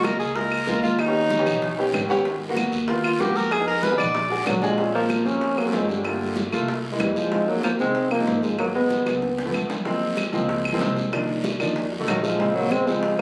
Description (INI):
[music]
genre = Afro-Cuban jazz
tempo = 189 BPM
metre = 4/4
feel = straight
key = Eb minor, Bb minor from 4.8 s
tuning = A4 = 439 Hz
[part]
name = breathy tenor saxophone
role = second line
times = 0.0-9.2, 12.1-13.2 s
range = D3 to D5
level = -27 LUFS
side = equal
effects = none
[part]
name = warm upright piano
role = accompaniment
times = 0.0-13.2 s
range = Db3 to G5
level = -28 LUFS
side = equal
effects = none
[part]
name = upright bass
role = bass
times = 0.0-13.2 s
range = Gb1 to G2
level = -35 LUFS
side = equal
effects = none
[part]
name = bongos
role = percussion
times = 0.0-13.2 s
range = none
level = -36 LUFS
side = equal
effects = none
[part]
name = claves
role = percussion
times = 0.0-13.2 s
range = none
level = -34 LUFS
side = equal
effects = none
[part]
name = congas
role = percussion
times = 0.0-13.2 s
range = none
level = -35 LUFS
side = equal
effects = none
[part]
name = guiro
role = percussion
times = 0.0-13.2 s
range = none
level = -38 LUFS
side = equal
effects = none
[part]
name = mellow trombone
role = melody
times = 4.5-9.7, 12.1-13.2 s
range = Gb3 to Db4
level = -26 LUFS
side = equal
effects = none
[sound]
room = moderate studio reverb, RT60 0.9 s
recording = recorded on a phone in the room, club reverb, compression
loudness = -23 LUFS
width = mono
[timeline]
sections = 0.0-4.8 A section; 4.8-13.2 B section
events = tenor saxophone solo 0.0-4.8; upright piano fill 1.8-2.3; drum fill 9.1-9.9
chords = 0.0 Gbmaj9; 1.0 Ebaug7; 2.3 Abm9; 3.5 Fm7b5; 4.2 Bbaug7; 4.8 Bbm9; 6.0 Gm9; 6.7 C7b13; 7.3 Fm7; 8.6 Abm9; 9.2 Dbaug7; 9.9 Gbmaj9#11; 11.1 Cm11; 11.8 F7b9; 12.4 Bbm9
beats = 0.04 0.36 0.67 | 0.99 1.31 1.62 1.94 | 2.25 2.57 2.89 3.20 | 3.52 3.83 4.15 4.47 | 4.78 5.10 5.42 5.73 | 6.05 6.37 6.68 7.00 | 7.32 7.63 7.95 8.27 | 8.59 8.90 9.22 9.54 | 9.86 10.17 10.49 10.81 | 11.12 11.44 11.76 12.08 | 12.39 12.71 13.03